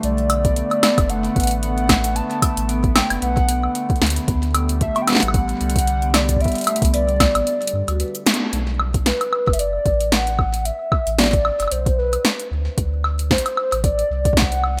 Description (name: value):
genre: IDM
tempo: 113 BPM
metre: 4/4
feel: swing 56% on 16ths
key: B phrygian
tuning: A4 = 440 Hz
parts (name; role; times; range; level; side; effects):
- warbly nostalgic lead; melody; 0.0-14.8 s; B4 to A5; -25 LUFS; equal; chorus, tremolo, tape echo
- warbly tape-like pad; sustained chords; 0.0-8.5 s; D3 to B3; -30 LUFS; equal; chorus, built-in reverb, vintage 12-bit sampler grit
- warm sub bass; bass; 0.0-14.8 s; F#1 to G2; -25 LUFS; equal; none
- electro analog drum machine; drums; 0.0-14.8 s; cabasa, hi-hat, snare drum, woodblock; -22 LUFS; equal; none
- vibraphone with medium mallets; arpeggios; 0.4-8.5 s; A3 to B4; -30 LUFS; equal; delay
- electronic kick drum; drums; 0.4-14.5 s; none; -23 LUFS; equal; overdrive
room: moderate plate reverb, RT60 2.0 s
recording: rough home demo mix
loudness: -19 LUFS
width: mono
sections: 0.0-8.5 A section; 8.5-14.8 B section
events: kick drops out 8.0-8.5; band accent 8.3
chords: 0.0 Bm7; 4.3 Dsus4; 8.5 Bm7; 12.8 D5